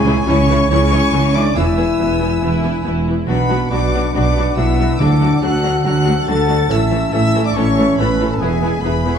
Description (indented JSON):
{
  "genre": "cinematic, heroic adventure film score",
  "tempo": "140 BPM",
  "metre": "4/4",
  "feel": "straight",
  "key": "D lydian",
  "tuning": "A4 = 443 Hz",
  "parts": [
    { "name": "rich chamber violin section", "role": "melody", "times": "0.0-9.2 s", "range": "G#5 to A6", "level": "-25 LUFS", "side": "left 5 dB", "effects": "none" },
    { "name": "mellow cor anglais", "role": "second line", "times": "0.0-9.2 s", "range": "G#4 to C#5", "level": "-28 LUFS", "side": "right 2 dB", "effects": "none" },
    { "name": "mellow small flute group", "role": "second line", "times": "0.0-9.2 s", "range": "E5 to G#5", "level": "-28 LUFS", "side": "left 4 dB", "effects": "none" },
    { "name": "warm clarinet", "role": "second line", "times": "0.0-9.2 s", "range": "B3 to E4", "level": "-27 LUFS", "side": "left 2 dB", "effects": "none" },
    { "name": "warm French horn section", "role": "sustained chords", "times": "0.0-9.2 s", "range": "G#3 to A4", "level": "-21 LUFS", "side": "left 5 dB", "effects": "none" },
    { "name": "warm trumpet section", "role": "stabs", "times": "0.0-9.2 s", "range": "G#4 to A5", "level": "-23 LUFS", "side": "right 2 dB", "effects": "none" },
    { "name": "rich symphonic cello section", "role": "bass", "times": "0.0-9.2 s", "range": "E2 to D3", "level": "-20 LUFS", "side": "right 2 dB", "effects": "none" },
    { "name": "rich symphonic double bass section", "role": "bass", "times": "0.0-9.2 s", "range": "E1 to D2", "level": "-20 LUFS", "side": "right 3 dB", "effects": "none" },
    { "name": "rich symphonic violin section", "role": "second line", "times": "0.1-9.2 s", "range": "B3 to A4", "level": "-27 LUFS", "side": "left 3 dB", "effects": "none" },
    { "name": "rich symphonic viola section", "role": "accompaniment", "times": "0.1-9.1 s", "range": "E3 to C#4", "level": "-24 LUFS", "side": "right 1 dB", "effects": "none" },
    { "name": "timpani", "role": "percussion", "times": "5.0-5.6 s", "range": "D3", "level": "-21 LUFS", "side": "equal", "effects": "none" }
  ],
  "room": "wet scoring stage reverb, RT60 1.8 s",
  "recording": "dark, warm production",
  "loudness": "-13 LUFS",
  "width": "side -7 dB against mid",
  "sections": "0.0-9.2 A section",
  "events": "none",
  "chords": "0.0 C#m; 1.6 E; 3.3 Bm; 5.0 D; 6.7 A; 8.4 E",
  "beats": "0.27 0.70 1.12 | 1.55 1.99 2.42 2.85 | 3.28 3.71 4.14 4.57 | 4.99 5.42 5.85 6.27 | 6.70 7.12 7.55 7.98 | 8.40 8.83"
}